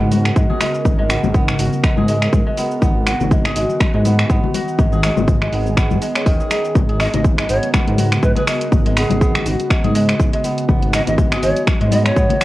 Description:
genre	afro house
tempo	122 BPM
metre	4/4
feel	swing 56% on 16ths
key	G# minor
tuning	A4 = 444 Hz
part	ethereal airy pad	sustained chords	0.0-12.4 s	C#3 to A#4	-24 LUFS	equal	ensemble chorus, built-in reverb, sidechain pumping, cassette tape
part	kora	arpeggios	0.0-12.4 s	D#3 to G#4	-23 LUFS	right 1 dB	sidechain pumping, cassette tape, tape echo
part	dark detuned saw bass	bass	0.0-12.3 s	D#1 to G#2	-19 LUFS	equal	sidechain pumping
part	congas	percussion	0.0-12.4 s	none	-24 LUFS	left 6 dB	none
part	house drum kit	drums	0.1-12.4 s	finger snaps, hi-hat, shaker	-22 LUFS	equal	overdrive
part	electronic kick drum	drums	0.4-12.3 s	none	-16 LUFS	equal	overdrive
part	breathy reedy large pan pipes	melody	7.0-12.4 s	G#4 to D#5	-21 LUFS	right 1 dB	cassette tape, tape echo
room	light reverb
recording	home recording on cassette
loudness	-14 LUFS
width	side -17 dB against mid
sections	0.0-12.4 A section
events	none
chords	0.0 G#m11; 2.8 B/G#; 6.8 G#m11; 10.7 B/G#

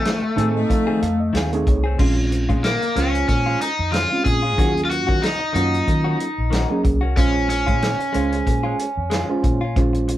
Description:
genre	straight-eighth soul blues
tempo	93 BPM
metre	4/4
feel	swing 56% on 16ths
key	Bb minor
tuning	A4 = 440 Hz
part	overdriven semi-hollow guitar	melody	0.0-10.0 s	A3 to Ab4	-22 LUFS	left 1 dB	none
part	warm horn section	sustained chords	0.0-1.2 s	A3 to F4	-31 LUFS	right 1 dB	none
part	direct-recorded clean electric guitar	stabs	0.0-10.1 s	Eb3 to G#4	-29 LUFS	left 3 dB	none
part	vintage muted fingered electric bass	bass	0.0-10.2 s	Bb1 to F3	-23 LUFS	equal	none
part	warm soul drum kit	drums	0.1-10.2 s	crash cymbal, hi-hat, kick drum, snare drum	-22 LUFS	equal	none
part	overdriven reed electric piano	accompaniment	0.4-10.2 s	Gb3 to A5	-23 LUFS	right 3 dB	none
room	moderate small room reverb, RT60 0.5 s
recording	band playing live in one room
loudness	-17 LUFS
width	side -13 dB against mid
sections	0.0-2.0 A section; 2.0-10.2 B section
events	overdriven electric guitar solo 0.0-2.0; reed electric piano fill 0.1-2.0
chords	0.0 F7#9; 2.0 Bbm7; 4.6 Ebm7; 7.2 Bbm7

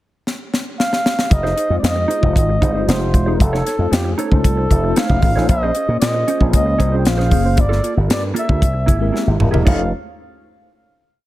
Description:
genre	polished 1980s jazz-funk pop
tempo	115 BPM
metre	4/4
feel	straight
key	F minor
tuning	A4 = 440 Hz
part	tight funk drum kit	drums	0.3-9.8 s	crash cymbal, hi-hat, kick drum, snare drum, toms	-17 LUFS	equal	gated reverb
part	breathy flugelhorn	melody	0.8-9.9 s	G4 to G5	-22 LUFS	equal	none
part	mellow electric guitar	riff	1.3-9.8 s	Bb3 to Db5	-25 LUFS	right 4 dB	analog chorus
part	slap bass with an envelope filter	bass	1.3-9.9 s	Eb1 to Bb2	-18 LUFS	equal	none
part	mellow tine electric piano	accompaniment	1.7-9.9 s	Ab3 to C5	-23 LUFS	left 2 dB	medium stereo tremolo, analog chorus
room	little or no reverb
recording	none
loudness	-14 LUFS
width	side -16 dB against mid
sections	0.0-1.3 pickup bar; 1.3-9.7 verse; 9.7-11.3 final chord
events	drum fill 0.3-1.3, 9.1-9.7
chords	0.0 N.C.; 1.3 Fm7; 3.4 F7b13; 5.5 Bbm9; 7.6 Gm9; 8.6 C7b13; 9.7 F7b13

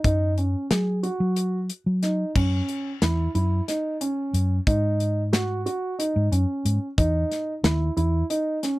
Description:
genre	progressive instrumental, band music in an uneven meter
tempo	182 BPM (eighths)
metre	7/8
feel	straight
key	unclear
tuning	A4 = 440 Hz
part	dark baby grand piano	arpeggios	0.0-8.8 s	C#4 to G#4	-26 LUFS	right 2 dB	none
part	hollow-body short-scale fingered electric bass	bass	0.0-8.2 s	D#2 to F#3	-23 LUFS	equal	none
part	modern studio drum kit	drums	0.0-8.8 s	crash cymbal, hi-hat, kick drum, snare drum	-26 LUFS	left 1 dB	none
room	light reverb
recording	dry, close 1970s-style studio recording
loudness	-22 LUFS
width	side -19 dB against mid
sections	0.0-2.4 A section; 2.4-8.8 B section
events	none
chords	0.0 N.C.; 2.4 F#5; 4.7 G#5; 7.0 C#madd9 (rootless)

